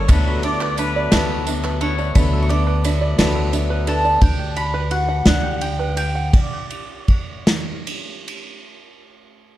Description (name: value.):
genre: indie folk with a building arrangement.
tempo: 58 BPM (dotted quarters).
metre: 6/8.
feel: uneven beats.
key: D major.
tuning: A4 = 438 Hz.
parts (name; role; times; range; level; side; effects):
mandolin; melody; 0.0-8.2 s; D5 to D6; -25 LUFS; equal; digital delay.
warm trumpet; second line; 0.0-2.1 s; B4 to D5; -28 LUFS; left 7 dB; none.
picked swing-style acoustic guitar; accompaniment; 0.0-4.2 s; D3 to A4; -25 LUFS; left 4 dB; none.
open-back banjo; arpeggios; 0.0-6.3 s; D4 to F#5; -26 LUFS; right 5 dB; none.
upright bass; bass; 0.0-6.3 s; D2; -21 LUFS; equal; none.
unplugged drum kit; drums; 0.1-8.5 s; kick drum, ride cymbal, snare drum; -20 LUFS; equal; none.
group handclap; percussion; 0.1-2.1 s; none; -33 LUFS; right 4 dB; none.
tambourine; percussion; 0.1-4.1 s; none; -37 LUFS; right 10 dB; none.
room: light reverb.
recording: dark, warm production.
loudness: -16 LUFS.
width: side -14 dB against mid.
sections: 0.0-8.7 A section.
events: slowing down 4.2-8.7.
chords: 0.1 D6; 4.2 Gmaj7/D; 6.3 N.C..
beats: | 0.09 1.12 | 2.15 3.18 | 4.21 5.26 | 6.33 7.47.